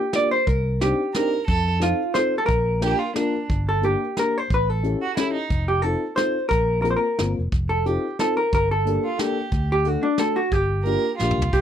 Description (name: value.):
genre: musette waltz.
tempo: 179 BPM.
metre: 3/4.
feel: straight.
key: Bb major, G minor from 3.5 s.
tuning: A4 = 440 Hz.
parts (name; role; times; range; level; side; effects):
vintage hollow-body jazz guitar; melody; 0.0-11.6 s; D4 to D5; -22 LUFS; equal; none.
dark upright piano; accompaniment; 0.1-11.4 s; A3 to Bb4; -26 LUFS; left 4 dB; none.
soft brush drum kit; drums; 0.1-11.6 s; hi-hat, kick drum, ride cymbal, snare drum, toms; -26 LUFS; equal; none.
fingered electric bass; bass; 0.5-11.6 s; F1 to F2; -24 LUFS; equal; none.
warm violin; second line; 1.1-5.6, 9.0-11.5 s; D4 to Bb4; -26 LUFS; right 6 dB; none.
room: little or no reverb.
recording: dry, close 1970s-style studio recording.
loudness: -20 LUFS.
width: side -9 dB against mid.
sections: 0.0-3.5 A section; 3.5-11.5 B section.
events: drum fill 11.2-11.5.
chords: 0.5 Cmadd9; 1.5 F7; 2.5 Bb; 3.5 Gm; 4.5 A7; 5.5 F7; 6.5 Bbsus2; 7.5 F7; 8.5 Gmadd9; 9.5 D; 10.5 Gm7.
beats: 0.15 | 0.48 0.82 1.15 | 1.49 1.82 2.15 | 2.49 2.82 3.16 | 3.50 3.84 4.17 | 4.51 4.84 5.18 | 5.51 5.84 6.18 | 6.51 6.85 7.19 | 7.52 7.86 8.20 | 8.53 8.86 9.20 | 9.53 9.86 10.19 | 10.53 10.86 11.20 | 11.53.